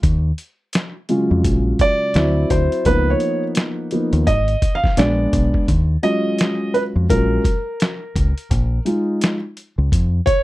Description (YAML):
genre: hip hop, jazz-hop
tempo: 85 BPM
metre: 4/4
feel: swing 60% on 16ths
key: Eb minor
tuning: A4 = 438 Hz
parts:
  - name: deep dub fingered electric bass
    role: bass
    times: 0.0-10.2 s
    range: Ab1 to F2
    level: -18 LUFS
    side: equal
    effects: none
  - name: trip hop sampler-style drum kit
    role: drums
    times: 0.0-10.4 s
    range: hi-hat, kick drum, snare drum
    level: -19 LUFS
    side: equal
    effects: none
  - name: dark grand piano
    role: accompaniment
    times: 1.1-10.4 s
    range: Db3 to F5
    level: -18 LUFS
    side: equal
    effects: none
room: little or no reverb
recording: dry, close 1970s-style studio recording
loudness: -16 LUFS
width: side -17 dB against mid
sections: 0.0-5.7 A section; 5.7-10.4 A section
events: grand piano solo 0.0-5.7, 5.7-10.4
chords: 0.0 Ebm11; 2.2 D9; 2.9 Db13; 5.0 Bb7b9; 5.7 Ebm11; 8.5 Bb7sus4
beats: | 0.04 0.74 1.45 2.16 | 2.86 3.57 4.27 4.98 | 5.69 6.39 7.10 7.80 | 8.51 9.21 9.92